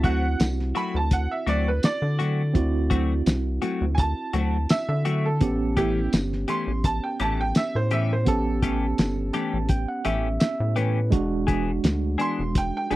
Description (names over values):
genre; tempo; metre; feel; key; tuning
straight-eighth soul blues; 84 BPM; 4/4; straight; unclear; A4 = 440 Hz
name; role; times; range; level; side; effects
bright upright piano; second line; 0.0-13.0 s; E4 to C6; -29 LUFS; right 3 dB; none
tine electric piano; accompaniment; 0.0-13.0 s; G#3 to A5; -29 LUFS; right 4 dB; medium stereo tremolo
clean electric guitar; stabs; 0.0-13.0 s; E3 to G#4; -28 LUFS; left 5 dB; analog chorus
rubbery square bass; bass; 0.0-13.0 s; E1 to D3; -25 LUFS; equal; none
cloth-damped thuddy drum kit; drums; 0.0-13.0 s; hi-hat, kick drum, snare drum, tambourine; -23 LUFS; equal; none
room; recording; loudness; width
little or no reverb; dry, close 1970s-style studio recording; -22 LUFS; side -16 dB against mid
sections
0.0-13.0 A section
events
upright piano solo 0.0-13.0; tine electric piano fill 9.0-11.1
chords
0.0 D7; 5.4 A7; 11.1 E7